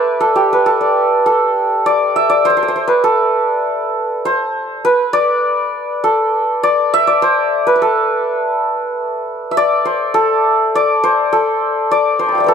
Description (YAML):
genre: indian classical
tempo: 101 BPM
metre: 4/4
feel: straight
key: D raga kafi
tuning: A4 = 440 Hz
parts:
  - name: santur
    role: solo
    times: 0.0-12.5 s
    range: G4 to B5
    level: -12 LUFS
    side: equal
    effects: none
room: light reverb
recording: close, detailed microphones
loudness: -12 LUFS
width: side -7 dB against mid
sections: 0.0-12.5 A section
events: speeding up 0.0-12.5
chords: none